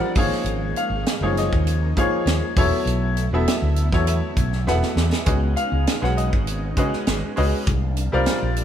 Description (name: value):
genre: electric jazz fusion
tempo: 100 BPM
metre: 4/4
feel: straight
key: unclear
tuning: A4 = 440 Hz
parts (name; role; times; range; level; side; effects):
- bright baby grand piano; accompaniment; 0.0-8.6 s; F3 to Gb5; -23 LUFS; left 1 dB; none
- string machine, full ensemble; sustained chords; 0.0-8.6 s; C3 to E4; -32 LUFS; equal; phaser, ensemble chorus
- fretless electric bass; bass; 0.2-8.6 s; E1 to Db3; -22 LUFS; equal; none
- tight funk drum kit; drums; 0.2-8.6 s; hi-hat, kick drum, snare drum; -24 LUFS; right 1 dB; none
room: light reverb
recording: band playing live in one room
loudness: -19 LUFS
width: side -10 dB against mid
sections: 0.0-8.6 A section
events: drum fill 4.7-5.3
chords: 0.2 Ab9sus4; 2.6 E9sus4; 5.3 Db9sus4; 7.7 C9sus4